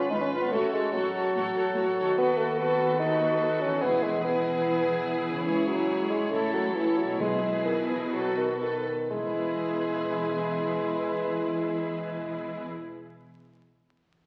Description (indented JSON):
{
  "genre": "classical",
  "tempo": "117-146 BPM",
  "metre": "4/4",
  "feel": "straight",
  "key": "E major",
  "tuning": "A4 = 445 Hz",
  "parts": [
    { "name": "warm symphonic violin section", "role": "melody", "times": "0.0-12.6 s", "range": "Cb5 to C#5", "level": "-40 LUFS", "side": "equal", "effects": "none" },
    { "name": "rich chamber violin section", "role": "second line", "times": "0.0-12.6 s", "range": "G#4 to Cb5", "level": "-38 LUFS", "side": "equal", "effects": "none" },
    { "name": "dark bassoon", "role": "accompaniment", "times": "0.0-12.6 s", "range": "D#3 to D#4", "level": "-30 LUFS", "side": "equal", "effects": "none" },
    { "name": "warm symphonic viola section", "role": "accompaniment", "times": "0.0-12.6 s", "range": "E4 to F#4", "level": "-34 LUFS", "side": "equal", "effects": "none" },
    { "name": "concert harp", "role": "arpeggios", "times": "0.0-13.0 s", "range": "Ab2 to E5", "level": "-42 LUFS", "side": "equal", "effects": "none" },
    { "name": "warm symphonic cello section", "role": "bass", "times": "0.1-12.6 s", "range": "C#2 to B2", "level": "-40 LUFS", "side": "equal", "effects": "none" },
    { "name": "warm symphonic double bass section", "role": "bass", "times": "0.0-12.6 s", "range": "E1 to D#2", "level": "-49 LUFS", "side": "equal", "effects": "none" },
    { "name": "timpani", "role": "percussion", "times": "3.8-4.4, 7.2-12.6 s", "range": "E2 to B2", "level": "-43 LUFS", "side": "equal", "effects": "none" }
  ],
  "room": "wet recital hall reverb, RT60 1.7 s",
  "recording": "very old 78 rpm record, vinyl crackle",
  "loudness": "-27 LUFS",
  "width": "mono",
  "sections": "0.0-9.1 A section; 9.1-13.0 B section",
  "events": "slowing down 4.6-9.1",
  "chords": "0.0 Fdim/Ab; 0.5 F#m/A; 2.2 B7/D#; 3.8 E; 5.5 C#m; 6.3 A; 7.2 E/B; 8.1 B7; 9.1 E",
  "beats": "0.11 | 0.52 0.93 1.34 1.76 | 2.18 2.59 3.00 3.41 | 3.82 4.23 4.64 5.06 | 5.47 5.89 6.32 6.75 | 7.20 7.65 8.11 8.60 | 9.10 9.58 10.07 10.56 | 11.04 11.53 12.01 12.50"
}